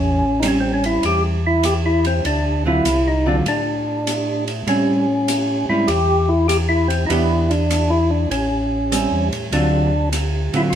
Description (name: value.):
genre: soul jazz organ trio.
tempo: 99 BPM.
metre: 4/4.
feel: swing 68% on 8ths.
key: A mixolydian.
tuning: A4 = 443 Hz.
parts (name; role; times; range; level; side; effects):
percussive tonewheel organ; melody; 0.0-10.7 s; B#3 to G4; -19 LUFS; equal; slow rotary speaker, overdrive.
mellow tonewheel organ; bass; 0.0-10.8 s; A1 to A2; -21 LUFS; equal; slow rotary speaker.
archtop guitar, miked and amplified; accompaniment; 0.4-10.7 s; D3 to G4; -22 LUFS; right 2 dB; none.
open jazz drum kit; drums; 0.4-10.8 s; hi-hat, ride cymbal; -26 LUFS; right 3 dB; none.
room: moderate large studio reverb, RT60 1.2 s.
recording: band playing live in one room.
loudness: -16 LUFS.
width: side -9 dB against mid.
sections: 0.0-10.8 A section.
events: none.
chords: 0.0 A7#9; 2.2 D7#9; 4.7 A7#9; 7.1 Em7; 8.3 A7#9; 9.5 D7#9.